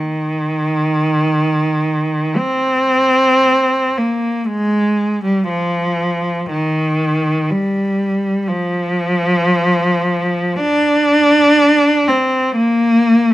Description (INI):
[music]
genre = classical, free, expressive piece for unaccompanied cello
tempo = 43-63 BPM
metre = 4/4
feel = rubato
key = Eb major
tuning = A4 = 440 Hz
[part]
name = rich cello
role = solo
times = 0.0-13.3 s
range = Eb3 to D4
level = -13 LUFS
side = equal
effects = none
[sound]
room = light reverb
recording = close, detailed microphones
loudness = -13 LUFS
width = side -15 dB against mid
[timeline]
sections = 0.0-13.3 A section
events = none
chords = none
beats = 1.08 2.38 3.46 | 4.48 5.49 6.50 7.50 | 8.48 9.46 10.62 11.60 | 12.56